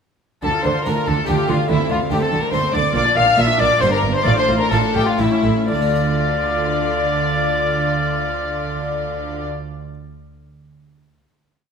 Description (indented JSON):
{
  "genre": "classical, baroque-style concerto movement with solo episodes",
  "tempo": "120-144 BPM",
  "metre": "3/4",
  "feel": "straight",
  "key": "D minor",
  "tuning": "A4 = 441 Hz",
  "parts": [
    { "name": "dark violin", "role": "melody", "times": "0.4-9.5 s", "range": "E4 to F5", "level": "-22 LUFS", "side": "left 2 dB", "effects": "none" },
    { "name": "rich chamber violin section", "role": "melody", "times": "0.4-9.4 s", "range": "D5 to F6", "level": "-26 LUFS", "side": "left 5 dB", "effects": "none" },
    { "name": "rich chamber violin section", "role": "second line", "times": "0.4-9.5 s", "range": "E4 to F5", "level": "-23 LUFS", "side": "left 4 dB", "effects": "none" },
    { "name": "harpsichord", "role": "accompaniment", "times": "0.4-9.9 s", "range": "G2 to D5", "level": "-24 LUFS", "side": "equal", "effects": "none" },
    { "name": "warm chamber viola section", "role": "accompaniment", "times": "0.4-9.5 s", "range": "A3 to F4", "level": "-27 LUFS", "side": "right 2 dB", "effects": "none" },
    { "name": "rich chamber cello section", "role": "bass", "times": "0.4-9.4 s", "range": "G2 to D3", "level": "-25 LUFS", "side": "right 3 dB", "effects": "none" },
    { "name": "warm chamber double bass section", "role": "bass", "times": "0.4-9.5 s", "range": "G1 to D2", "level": "-24 LUFS", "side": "right 4 dB", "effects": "none" }
  ],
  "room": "moderate scoring stage reverb, RT60 1.6 s",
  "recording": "none",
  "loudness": "-16 LUFS",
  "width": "side -6 dB against mid",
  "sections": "0.4-5.7 ritornello; 5.7-8.7 final chord",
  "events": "slowing down 2.3-5.7",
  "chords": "0.4 Dm; 1.7 Am/D; 2.9 Bb; 3.8 Gm; 4.3 Dm/A; 5.2 A; 5.7 Dm",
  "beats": "| 0.43 0.85 1.27 | 1.69 2.11 2.53 | 2.95 3.38 3.81 | 4.25 4.71 5.19 | 5.69 6.19 6.69 | 7.19 7.69 8.19"
}